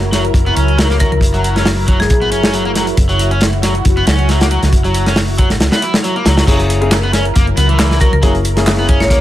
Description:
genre	breakbeat, breaks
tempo	137 BPM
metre	4/4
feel	swing 54% on 16ths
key	unclear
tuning	A4 = 442 Hz
part	lush unison pad	sustained chords	0.0-9.2 s	F#3 to A#4	-21 LUFS	left 1 dB	chorus, phaser, sidechain pumping
part	hollow-body short-scale fingered electric bass	bass	0.0-9.2 s	F#1 to C#2	-15 LUFS	equal	tube saturation
part	punchy analog drum machine	drums	0.0-9.2 s	handclaps, hi-hat	-25 LUFS	equal	none
part	crunchy overdriven guitar	riff	0.1-9.2 s	E3 to E4	-19 LUFS	right 1 dB	digital delay
part	crunchy breakbeat drum kit	drums	0.1-9.2 s	crash cymbal, hi-hat, kick drum, snare drum	-14 LUFS	equal	none
part	marimba with hard mallets	melody	1.0-2.2, 8.0-9.2 s	G#4 to C#5	-20 LUFS	left 2 dB	old record sound, digital delay
part	warm concert grand piano	stabs	6.5-9.2 s	A#3 to G#4	-18 LUFS	left 3 dB	digital delay
room	little or no reverb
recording	none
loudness	-10 LUFS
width	side -13 dB against mid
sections	0.0-6.5 A section; 6.5-9.2 B section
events	drop 6.5-9.2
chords	0.0 F#7

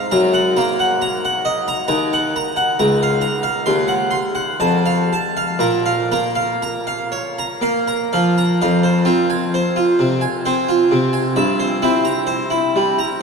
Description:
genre	classical, baroque-style suite movement for harpsichord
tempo	59-68 BPM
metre	3/4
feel	rubato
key	Bb minor, F minor from 8.6 s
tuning	A4 = 441 Hz
part	harpsichord	solo	0.0-13.2 s	Db2 to C6	-15 LUFS	equal	none
room	wet cathedral reverb, RT60 7.3 s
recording	in a vast, echoing space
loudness	-15 LUFS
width	side -5 dB against mid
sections	0.0-8.6 A section; 8.6-13.2 A section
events	none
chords	0.1 Ebm/Gb; 1.9 Ebm; 2.8 Bbm/Db; 3.7 Cdim/Eb; 4.6 F; 5.6 Bbm; 8.6 Fm; 11.3 C7/G

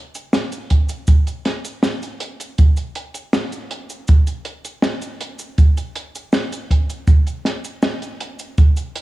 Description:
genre	vaporwave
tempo	80 BPM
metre	4/4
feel	straight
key	none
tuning	none
part	compact cocktail drum kit	drums	0.1-9.0 s	cabasa, hi-hat, snare drum	-22 LUFS	equal	none
part	kick drum	drums	0.7-8.7 s	none	-12 LUFS	right 1 dB	none
room	little or no reverb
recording	dry, gritty hardware recording, cassette tape, studio reverb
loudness	-16 LUFS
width	side -17 dB against mid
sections	0.0-9.0 A section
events	none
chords	none

